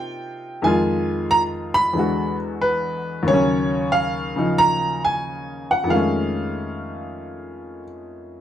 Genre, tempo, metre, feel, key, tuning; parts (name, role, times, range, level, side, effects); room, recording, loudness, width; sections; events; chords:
solo jazz; 91 BPM; 4/4; swing 69% on 8ths; A4 = 440 Hz
clear upright piano; solo; 0.0-8.4 s; Eb2 to Cb6; -20 LUFS; equal
moderate studio reverb, RT60 0.7 s; -18 LUFS; side -10 dB against mid
0.0-8.4 A section
0.0 Cm9; 0.6 Fm7; 2.0 E9; 3.3 Ebm9; 5.9 F7alt